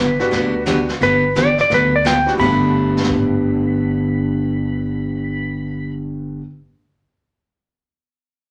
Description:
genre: country, western swing.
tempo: 173 BPM.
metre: 4/4.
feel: swing 63% on 8ths.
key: G major.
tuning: A4 = 441 Hz.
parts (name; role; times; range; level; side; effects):
clean lap steel guitar; melody; 0.0-5.9 s; B4 to B5; -21 LUFS; equal; none.
picked steel-string acoustic guitar; accompaniment; 0.0-6.4 s; G2 to G4; -22 LUFS; equal; none.
upright bass; bass; 0.0-6.4 s; G1 to D2; -28 LUFS; equal; none.
clear upright piano; accompaniment; 0.2-6.4 s; G2 to F#4; -28 LUFS; equal; none.
jazz brush drum kit; drums; 0.2-3.2 s; brushed snare drum, crash cymbal, hi-hat, kick drum, snare drum; -27 LUFS; equal; none.
room: wet club reverb, RT60 0.6 s.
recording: none.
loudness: -18 LUFS.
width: mono.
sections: 0.0-1.0 A section; 1.0-2.4 B section; 2.4-5.2 C section.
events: none.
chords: 0.0 Gmaj7; 2.4 G.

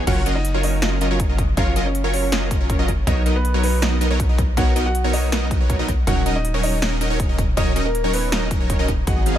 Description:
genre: future bass.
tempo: 160 BPM.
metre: 4/4.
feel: half-time.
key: Eb minor.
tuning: A4 = 440 Hz.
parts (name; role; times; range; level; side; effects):
supersaw stab; riff; 0.0-9.4 s; Gb3 to F5; -23 LUFS; right 1 dB; sidechain pumping.
long sustained 808-style bass; bass; 0.0-9.4 s; Eb1 to B1; -22 LUFS; equal; sidechain pumping.
warm grand piano; melody; 0.1-9.4 s; Bb3 to Gb5; -28 LUFS; equal; sidechain pumping, dub echo.
big-room dance drum kit; drums; 0.1-9.3 s; crash cymbal, hi-hat, snare drum; -28 LUFS; equal; none.
electronic kick drum; drums; 0.1-9.1 s; none; -21 LUFS; equal; none.
room: little or no reverb.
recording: none.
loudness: -17 LUFS.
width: side -11 dB against mid.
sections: 0.0-9.4 A section.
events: none.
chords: 0.1 Gbmaj7; 3.1 Bmaj9; 6.1 Ebm7.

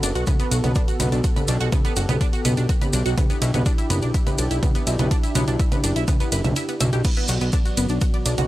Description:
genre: melodic techno.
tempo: 124 BPM.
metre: 4/4.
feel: straight.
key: unclear.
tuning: A4 = 440 Hz.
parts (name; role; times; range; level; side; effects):
warm analog pad; sustained chords; 0.0-8.5 s; B3 to D5; -29 LUFS; equal; chorus, sidechain pumping.
tight sequenced synth; arpeggios; 0.0-8.5 s; B3 to E6; -28 LUFS; right 1 dB; chorus, phaser, sidechain pumping, analog delay.
fat analog bass; bass; 0.0-8.5 s; F#1 to B1; -22 LUFS; equal; sidechain pumping.
house drum kit; drums; 0.0-8.5 s; congas, crash cymbal, hi-hat, ride cymbal; -27 LUFS; right 2 dB; none.
maracas; percussion; 0.0-8.5 s; none; -33 LUFS; left 2 dB; none.
electronic kick drum; drums; 0.3-8.1 s; none; -21 LUFS; equal; none.
analog drone; drone; 7.3-8.5 s; B2 to F#3; -34 LUFS; left 1 dB; none.
room: little or no reverb.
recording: dry, gritty hardware recording, transformer saturation.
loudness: -18 LUFS.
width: side -16 dB against mid.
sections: 0.0-7.0 A section; 7.0-8.5 A section.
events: drop 0.0-7.0, 7.0-8.5; kick drops out 6.6-7.0.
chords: 0.0 Gmaj7; 3.2 Em7; 7.0 Bm.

